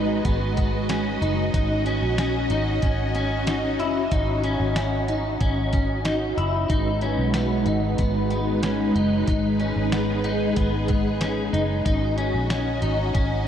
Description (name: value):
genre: dream pop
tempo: 93 BPM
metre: 4/4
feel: straight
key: G# minor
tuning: A4 = 440 Hz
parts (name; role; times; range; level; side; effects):
- string machine, violas; sustained chords; 0.0-13.5 s; G#3 to D#5; -25 LUFS; equal; phaser, ensemble chorus
- clean electric guitar; arpeggios; 0.0-13.5 s; B3 to E4; -27 LUFS; left 2 dB; ensemble chorus, diffuse ambient delay
- vintage muted fingered electric bass; bass; 0.0-13.5 s; F#1 to B1; -26 LUFS; equal; none
- detuned 8-bit digital drum machine; drums; 0.2-13.3 s; hi-hat, kick drum, snare drum; -28 LUFS; equal; none
- vibraphone with hard mallets; texture; 7.0-11.3 s; B4 to F#5; -40 LUFS; right 4 dB; none
room: wet cathedral reverb, RT60 6.7 s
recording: dreamy mix soaked in reverb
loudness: -21 LUFS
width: side -9 dB against mid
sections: 0.0-13.5 A section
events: none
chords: 0.0 G#m7; 1.5 D#m7; 6.7 G#m7; 11.9 D#m7/G#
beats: 0.25 0.89 | 1.54 2.18 2.83 3.47 | 4.12 4.76 5.41 6.05 | 6.70 7.34 7.99 8.63 | 9.28 9.92 10.57 11.21 | 11.86 12.50 13.15